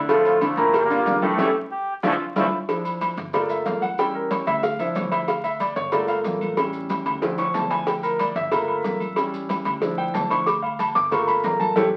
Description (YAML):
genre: latin, salsa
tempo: 185 BPM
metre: 4/4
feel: straight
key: D harmonic minor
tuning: A4 = 440 Hz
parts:
  - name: clear concert grand piano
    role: accompaniment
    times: 0.0-11.9 s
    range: A2 to D6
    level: -25 LUFS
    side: equal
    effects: none
  - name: upright bass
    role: bass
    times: 0.0-11.9 s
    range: G1 to D2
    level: -38 LUFS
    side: equal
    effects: none
  - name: bright trombone section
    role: melody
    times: 0.1-2.5 s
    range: D3 to Bb3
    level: -27 LUFS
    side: equal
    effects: none
  - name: melodica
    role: second line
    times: 0.1-2.6 s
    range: E4 to G4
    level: -30 LUFS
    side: equal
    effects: none
  - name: agogo bells and timbales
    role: percussion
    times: 0.1-11.8 s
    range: none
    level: -30 LUFS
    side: equal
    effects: none
  - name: congas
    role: percussion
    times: 0.1-11.8 s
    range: none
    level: -35 LUFS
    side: equal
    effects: none
  - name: cowbell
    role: percussion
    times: 0.1-11.8 s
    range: none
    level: -32 LUFS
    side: equal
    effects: none
  - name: maracas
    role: percussion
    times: 0.1-11.8 s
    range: none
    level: -51 LUFS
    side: equal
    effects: none
room: wet studio reverb, RT60 0.6 s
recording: very old 78 rpm record, vinyl crackle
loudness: -23 LUFS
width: mono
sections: 0.0-2.7 A section; 2.7-12.0 B section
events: band accent 1.4-2.7, 11.8; drum fill 2.2-2.7, 7.2-7.9; grand piano solo 2.7-12.0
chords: 0.0 Dmadd9; 0.7 Gm7; 1.4 A7; 2.0 Dmadd9; 3.3 Gm7; 4.0 A7; 4.6 Dmadd9; 5.9 Gm7; 6.6 A7; 7.2 Dmadd9; 8.5 Gm7; 9.2 A7; 9.8 Dmadd9; 11.1 Gm7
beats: | 0.09 0.41 0.74 1.06 | 1.39 1.71 2.04 2.36 | 2.68 3.01 3.33 3.66 | 3.98 4.30 4.63 4.95 | 5.28 5.60 5.93 6.25 | 6.58 6.90 7.22 7.55 | 7.87 8.20 8.52 8.85 | 9.17 9.50 9.82 10.14 | 10.47 10.79 11.12 11.44 | 11.77